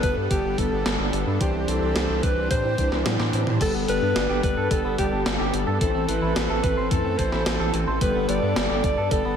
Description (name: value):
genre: synthwave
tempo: 109 BPM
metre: 4/4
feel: straight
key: G major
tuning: A4 = 440 Hz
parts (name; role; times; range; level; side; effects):
- breathy alto saxophone; melody; 0.0-9.4 s; G4 to D5; -27 LUFS; equal; ping-pong delay, slapback echo
- soft supersaw; sustained chords; 0.0-9.4 s; E3 to A4; -30 LUFS; right 1 dB; sidechain pumping
- analog synth brass; stabs; 0.0-9.4 s; E3 to C5; -29 LUFS; left 4 dB; chorus, cassette tape, slapback echo
- round analog bass; bass; 0.0-9.4 s; G1 to A2; -28 LUFS; equal; none
- electronic kick drum; drums; 0.0-9.2 s; none; -26 LUFS; equal; none
- gated 80s digital drum machine; drums; 0.0-9.2 s; crash cymbal, hi-hat, snare drum, toms; -28 LUFS; equal; gated reverb, gated reverb snare, slapback echo
- clean electric guitar; arpeggios; 3.6-9.4 s; E3 to C5; -31 LUFS; right 2 dB; tape echo, slapback echo
room: moderate lush hall reverb, RT60 2.1 s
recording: big arena sound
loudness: -20 LUFS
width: side -8 dB against mid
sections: 0.0-9.4 A section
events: drum fill 3.1-3.6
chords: 0.0 Gadd9; 1.4 Cadd9; 3.6 Gadd9; 5.8 Am; 8.0 Gadd9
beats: 0.31 0.86 | 1.41 1.96 2.51 3.06 | 3.61 4.16 4.71 5.26 | 5.81 6.36 6.91 7.46 | 8.01 8.56 9.12